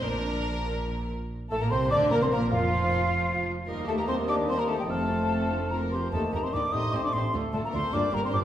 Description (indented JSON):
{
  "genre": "quick classical-period movement for symphony orchestra",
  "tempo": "94-104 BPM (dotted quarters)",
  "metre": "6/8",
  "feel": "rubato",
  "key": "Bb major",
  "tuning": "A4 = 440 Hz",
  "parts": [
    { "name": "warm chamber violin section", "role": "melody", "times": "0.0-8.4 s", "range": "F4 to D5", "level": "-40 LUFS", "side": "left 3 dB", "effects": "none" },
    { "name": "warm chamber violin section", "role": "second line", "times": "0.0-8.4 s", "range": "F4 to Eb5", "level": "-37 LUFS", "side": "left 2 dB", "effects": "none" },
    { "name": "dark chamber viola section", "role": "accompaniment", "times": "0.0-8.4 s", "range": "F3 to G4", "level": "-36 LUFS", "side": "equal", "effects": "none" },
    { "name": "warm chamber cello section", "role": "bass", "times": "0.0-8.4 s", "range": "D2 to D3", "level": "-34 LUFS", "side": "right 2 dB", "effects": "none" },
    { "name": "warm chamber double bass section", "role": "bass", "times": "0.0-8.4 s", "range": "F1 to Eb2", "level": "-33 LUFS", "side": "right 2 dB", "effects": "none" },
    { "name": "dark clarinet", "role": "second line", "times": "1.5-8.4 s", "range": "D4 to D5", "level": "-36 LUFS", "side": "equal", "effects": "none" },
    { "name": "dark cor anglais", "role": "second line", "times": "1.5-8.4 s", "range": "F4 to F5", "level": "-36 LUFS", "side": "right 1 dB", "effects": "none" },
    { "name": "hollow concert flute", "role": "second line", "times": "1.5-8.4 s", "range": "F5 to Eb6", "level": "-30 LUFS", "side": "equal", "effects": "none" },
    { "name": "warm bassoon", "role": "accompaniment", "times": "1.5-8.4 s", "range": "F3 to D4", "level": "-34 LUFS", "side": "right 1 dB", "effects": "none" },
    { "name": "mellow French horn section", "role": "sustained chords", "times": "1.5-8.4 s", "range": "F3 to Eb4", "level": "-32 LUFS", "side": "left 2 dB", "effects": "none" }
  ],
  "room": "wet recital hall reverb, RT60 1.7 s",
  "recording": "recorded in a church or concert hall",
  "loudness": "-25 LUFS",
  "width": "side -11 dB against mid",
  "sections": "0.0-1.3 A section; 1.3-8.4 B section",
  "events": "none",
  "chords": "0.0 Bb; 2.5 N.C.; 3.7 Eb; 4.9 F; 6.1 Eb; 6.7 Am7b5; 7.3 Dm; 7.9 Gm7"
}